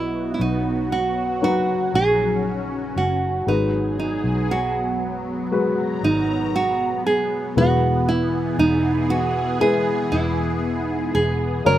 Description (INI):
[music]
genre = pop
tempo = 58 BPM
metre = 4/4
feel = straight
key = unclear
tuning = A4 = 440 Hz
[part]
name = nylon-string guitar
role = melody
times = 0.0-11.8 s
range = D#4 to A#4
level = -22 LUFS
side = right 3 dB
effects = none
[part]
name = dark baby grand piano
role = accompaniment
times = 0.0-11.8 s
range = B2 to D#5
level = -25 LUFS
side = left 3 dB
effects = slapback echo
[part]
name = lush unison pad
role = sustained chords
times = 0.0-11.8 s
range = A#2 to A#5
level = -26 LUFS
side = left 1 dB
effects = chorus, phaser
[part]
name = vintage muted fingered electric bass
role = bass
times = 0.0-11.8 s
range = E1 to B1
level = -26 LUFS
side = equal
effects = none
[sound]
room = little or no reverb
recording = recorded outdoors, with no room sound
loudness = -19 LUFS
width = side -12 dB against mid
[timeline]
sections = 0.0-11.8 A section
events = none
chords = 0.0 B; 3.5 G#m7; 7.6 E